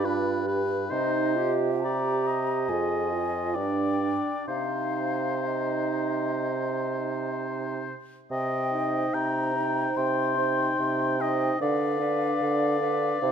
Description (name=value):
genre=classical, slow romantic movement for wind quintet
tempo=60-75 BPM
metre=4/4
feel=rubato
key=C minor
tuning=A4 = 440 Hz
part: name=mellow hollow concert flute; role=melody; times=0.0-13.3 s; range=Eb5 to C6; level=-32 LUFS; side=left 7 dB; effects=none
part: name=clear oboe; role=second line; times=0.0-13.3 s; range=B4 to G5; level=-31 LUFS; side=left 3 dB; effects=none
part: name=clear clarinet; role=accompaniment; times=0.0-13.3 s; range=D4 to C5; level=-32 LUFS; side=right 9 dB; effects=none
part: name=dark French horn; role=accompaniment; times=0.0-13.3 s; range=D4 to Ab4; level=-32 LUFS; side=right 1 dB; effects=none
part: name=mellow bassoon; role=bass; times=0.0-13.3 s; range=F2 to D3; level=-30 LUFS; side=right 3 dB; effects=none
room=moderate recital hall reverb, RT60 1.5 s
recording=none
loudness=-24 LUFS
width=side -7 dB against mid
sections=0.0-8.3 A section; 8.3-13.3 B section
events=none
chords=0.0 G7; 0.9 Cm; 2.7 Fm; 3.6 G5; 4.5 Cm; 11.6 Bdim/D